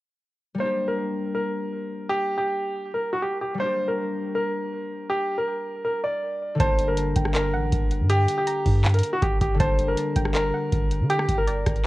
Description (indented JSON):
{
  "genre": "hip hop, trap",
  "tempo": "160 BPM",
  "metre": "4/4",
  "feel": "half-time",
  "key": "G minor",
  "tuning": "A4 = 441 Hz",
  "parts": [
    { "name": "concert harp", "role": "accompaniment", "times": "0.5-11.9 s", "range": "D3 to G4", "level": "-31 LUFS", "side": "left 3 dB", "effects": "none" },
    { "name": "clear baby grand piano", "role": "melody", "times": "0.6-11.9 s", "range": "F#4 to D5", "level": "-25 LUFS", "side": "equal", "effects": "none" },
    { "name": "soft round pluck", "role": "second line", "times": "6.6-11.9 s", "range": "D5 to Bb5", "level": "-34 LUFS", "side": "right 2 dB", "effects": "chorus, ping-pong delay" },
    { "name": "long sustained 808-style bass", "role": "bass", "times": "6.6-11.9 s", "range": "G1 to D3", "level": "-25 LUFS", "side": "equal", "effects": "none" },
    { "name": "booming analog drum machine", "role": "drums", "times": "6.6-11.9 s", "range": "handclaps, hi-hat, kick drum, rim click", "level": "-24 LUFS", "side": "equal", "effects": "none" }
  ],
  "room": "digital ambience",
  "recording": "worn, warbling old tape, cassette tape, warbly pitch drift",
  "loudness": "-22 LUFS",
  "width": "side -18 dB against mid",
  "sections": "0.6-6.6 A section; 6.6-11.9 B section",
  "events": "none",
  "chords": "0.6 Gm",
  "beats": "| 0.60 0.97 1.35 1.72 | 2.10 2.47 2.85 3.22 | 3.60 3.97 4.35 4.72 | 5.10 5.47 5.85 6.22 | 6.60 6.97 7.35 7.72 | 8.10 8.47 8.85 9.22 | 9.60 9.97 10.35 10.72 | 11.10 11.47 11.85"
}